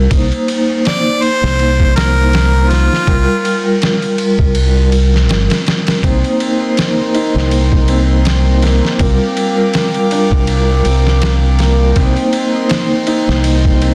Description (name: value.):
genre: trip hop.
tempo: 81 BPM.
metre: 4/4.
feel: swing 56% on 16ths.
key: C minor.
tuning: A4 = 441 Hz.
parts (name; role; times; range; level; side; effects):
vibraphone with medium mallets; accompaniment; 0.0-13.9 s; G3 to C5; -19 LUFS; equal; tremolo, tape echo.
modern bright fingered electric bass; bass; 0.0-13.9 s; G1 to C2; -15 LUFS; equal; none.
trip hop sampler-style drum kit; drums; 0.1-13.9 s; kick drum, ride cymbal, snare drum; -19 LUFS; equal; studio ambience.
warm harmonica; melody; 0.9-3.8 s; F4 to D5; -19 LUFS; equal; tape echo.
warm symphonic violin section; sustained chords; 6.0-13.9 s; Bb4 to D6; -25 LUFS; equal; none.
felt-muted upright piano; arpeggios; 6.0-13.9 s; Bb3 to Eb4; -24 LUFS; equal; vintage 12-bit sampler grit, tape echo.
room: light reverb, small room ambience.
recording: dense, heavily limited modern master.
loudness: -13 LUFS.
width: mono.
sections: 0.0-13.9 A section.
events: none.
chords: 0.1 Cm7; 3.1 Gm7/C; 6.0 Cm7; 9.0 Gm7/C; 12.0 Cm7.